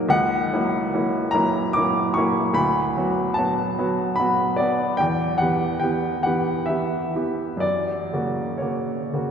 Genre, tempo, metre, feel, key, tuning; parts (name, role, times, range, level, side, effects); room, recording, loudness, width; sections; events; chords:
classical, romantic nocturne for solo piano; 54-76 BPM; 3/4; rubato; A4 = 440 Hz
clear upright piano; solo; 0.0-9.3 s; C#2 to D6; -20 LUFS; equal
wet church reverb, RT60 3.6 s; -20 LUFS; side -7 dB against mid
0.0-9.3 A section
0.1 F#7/C#; 2.6 Bm/D; 5.0 Em; 7.6 F#